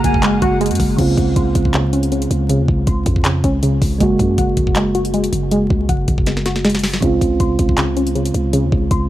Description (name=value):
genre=hip hop, trap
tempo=159 BPM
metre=4/4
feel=half-time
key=Db major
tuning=A4 = 436 Hz
part: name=mellow hollow jazz flute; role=second line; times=0.0-0.6 s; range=Gb5 to Ab5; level=-26 LUFS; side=right 1 dB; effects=ping-pong delay
part: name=soft electric-piano-like synth keys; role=accompaniment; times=0.0-9.1 s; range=Db3 to Gb4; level=-21 LUFS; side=right 3 dB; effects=chorus, low-pass filter
part: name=granular cloud pad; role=sustained chords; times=0.0-1.0 s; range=Bb3 to Gb5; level=-25 LUFS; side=equal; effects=built-in reverb
part: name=glassy wavetable pluck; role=arpeggios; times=0.0-9.1 s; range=Db3 to C6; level=-19 LUFS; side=left 1 dB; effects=chorus, low-pass filter, ping-pong delay
part: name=growling 808-style bass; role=bass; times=0.0-9.1 s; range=Gb1 to Gb2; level=-20 LUFS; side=equal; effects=none
part: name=trap drum kit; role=drums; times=0.0-9.0 s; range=crash cymbal, handclaps, hi-hat, kick drum, snare drum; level=-19 LUFS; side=equal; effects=none
room=little or no reverb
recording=vinyl crackle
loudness=-14 LUFS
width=side -14 dB against mid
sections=1.0-9.1 A section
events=drum fill 6.3-7.0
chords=0.0 Gbadd9; 1.0 Dbmaj7; 4.0 Gbadd9; 7.0 Dbmaj7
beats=0.23 0.61 | 0.99 1.36 1.74 2.12 | 2.50 2.87 3.25 3.63 | 4.00 4.38 4.76 5.14 | 5.51 5.89 6.27 6.65 | 7.02 7.40 7.78 8.16 | 8.53 8.91